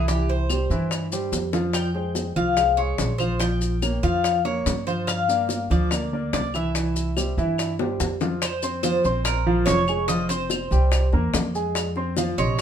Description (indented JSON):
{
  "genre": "latin, Cuban son and guajira",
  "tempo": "144 BPM",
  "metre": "4/4",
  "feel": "straight",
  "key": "F minor",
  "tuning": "A4 = 440 Hz",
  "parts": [
    { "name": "Cuban tres", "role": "melody", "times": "0.0-12.6 s", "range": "G4 to G5", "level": "-26 LUFS", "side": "left 2 dB", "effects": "none" },
    { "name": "warm grand piano", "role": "arpeggios", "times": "0.0-12.6 s", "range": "C3 to C6", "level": "-25 LUFS", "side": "right 1 dB", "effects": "none" },
    { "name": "upright bass", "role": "bass", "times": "0.0-12.6 s", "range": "F1 to G2", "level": "-26 LUFS", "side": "equal", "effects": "none" },
    { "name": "bongos", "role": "percussion", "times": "0.1-12.6 s", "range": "none", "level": "-30 LUFS", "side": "left 4 dB", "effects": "none" },
    { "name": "maracas", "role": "percussion", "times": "0.1-12.6 s", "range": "none", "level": "-33 LUFS", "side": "left 4 dB", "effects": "none" },
    { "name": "claves", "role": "percussion", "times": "0.5-12.0 s", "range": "none", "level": "-33 LUFS", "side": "left 4 dB", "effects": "none" }
  ],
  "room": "moderate studio reverb, RT60 0.8 s",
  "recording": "minimal, uncompressed stereo recording",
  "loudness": "-21 LUFS",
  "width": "side -8 dB against mid",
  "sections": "0.0-8.4 A section; 8.4-12.6 B section",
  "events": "drum fill 1.3-1.7, 7.8-8.4",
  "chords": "0.1 C; 1.7 Fmadd9; 3.4 Bbm; 5.1 Gm7; 6.8 C; 8.4 F5; 9.3 Bbmadd9; 10.1 F5; 10.9 C7; 11.8 Fm7",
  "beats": "| 0.08 0.50 0.91 1.33 | 1.74 2.16 2.58 2.99 | 3.41 3.83 4.24 4.66 | 5.08 5.50 5.91 6.33 | 6.75 7.17 7.59 8.00 | 8.42 8.84 9.26 9.67 | 10.09 10.51 10.92 11.34 | 11.76 12.17 12.59"
}